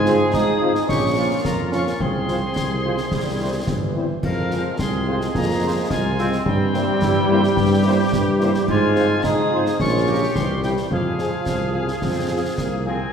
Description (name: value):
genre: military-style march for wind band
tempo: 108 BPM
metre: 2/4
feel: straight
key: F minor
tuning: A4 = 441 Hz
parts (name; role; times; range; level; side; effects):
- bright piccolo; second line; 0.0-13.1 s; F5 to Eb6; -29 LUFS; left 2 dB; none
- clear euphonium; second line; 0.0-12.8 s; F3 to Eb4; -24 LUFS; right 2 dB; none
- warm woodwind section; second line; 0.0-13.1 s; C4 to Bb4; -28 LUFS; equal; none
- mellow trombone section; sustained chords; 0.0-13.1 s; C3 to C4; -30 LUFS; equal; none
- mellow tuba; bass; 0.0-13.0 s; G1 to Ab2; -22 LUFS; right 1 dB; none
- dark trumpet section; melody; 0.1-13.0 s; G4 to F5; -34 LUFS; right 1 dB; none
- mellow French horn section; accompaniment; 0.1-13.0 s; F3 to F4; -29 LUFS; left 3 dB; none
- concert snare drum, concert bass drum and clash cymbals; drums; 0.1-12.8 s; none; -27 LUFS; left 1 dB; none
room: wet scoring stage reverb, RT60 2.1 s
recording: heard from further back in the room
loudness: -18 LUFS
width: side -7 dB against mid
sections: 0.0-13.1 A section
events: none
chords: 0.0 Fm/Ab; 0.9 Bbm; 2.0 Fm/C; 3.1 C; 4.2 Fm; 6.5 C7/G; 8.7 Fm/Ab; 9.8 Bbm; 10.4 C; 10.9 Fm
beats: 0.34 | 0.89 1.45 | 2.01 2.56 | 3.12 3.67 | 4.23 4.79 | 5.34 5.90 | 6.46 7.01 | 7.57 8.13 | 8.68 9.24 | 9.80 10.35 | 10.91 11.47 | 12.02 12.58